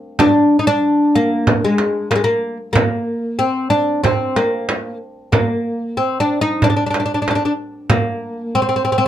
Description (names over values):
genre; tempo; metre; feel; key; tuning
Turkish makam ensemble; 93 BPM; 4/4; straight; unclear; A4 = 440 Hz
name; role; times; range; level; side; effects
oud; melody; 0.2-9.1 s; Ab3 to Eb4; -16 LUFS; left 1 dB; none
frame drum; percussion; 0.2-8.0 s; none; -18 LUFS; right 2 dB; none
room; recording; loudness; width
moderate studio ambience, RT60 0.5 s; dark, warm production; -15 LUFS; side -11 dB against mid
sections
0.0-9.1 A section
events
none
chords
none